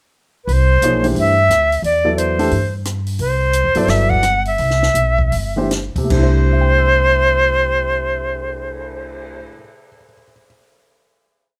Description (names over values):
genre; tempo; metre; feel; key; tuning
modal jazz; 150-177 BPM; 4/4; swing 63% on 8ths; C lydian; A4 = 440 Hz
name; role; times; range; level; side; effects
bright silver concert flute; melody; 0.4-9.4 s; B4 to F#5; -18 LUFS; equal; none
upright bass; bass; 0.5-9.4 s; G1 to G2; -21 LUFS; equal; none
compact cocktail drum kit; drums; 0.5-9.2 s; crash cymbal, cymbal swell, hi-hat, kick drum, rim click, snare drum; -30 LUFS; equal; none
warm concert grand piano; accompaniment; 0.8-10.4 s; C3 to E7; -23 LUFS; equal; none
room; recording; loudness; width
light reverb; close, detailed microphones; -16 LUFS; mono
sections
0.0-0.5 pickup bar; 0.5-6.1 A section; 6.1-9.3 final chord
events
slowing down 3.2-6.1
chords
0.5 C6